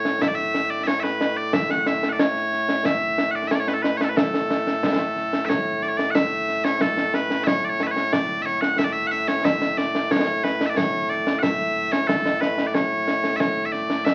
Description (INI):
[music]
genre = scottish traditional, Scottish pipe music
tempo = 91 BPM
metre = 2/4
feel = straight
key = A major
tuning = A4 = 440 Hz
[part]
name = loud bright bagpipes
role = melody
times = 0.0-14.1 s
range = A2 to F#5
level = -25 LUFS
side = equal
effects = none
[part]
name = concert snare drum and concert bass drum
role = drums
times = 0.1-14.1 s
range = none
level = -26 LUFS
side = equal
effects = none
[sound]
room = moderate studio reverb, RT60 0.7 s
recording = very old 78 rpm record, vinyl crackle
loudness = -22 LUFS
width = mono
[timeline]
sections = 0.0-5.5 A section; 5.5-14.1 B section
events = none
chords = none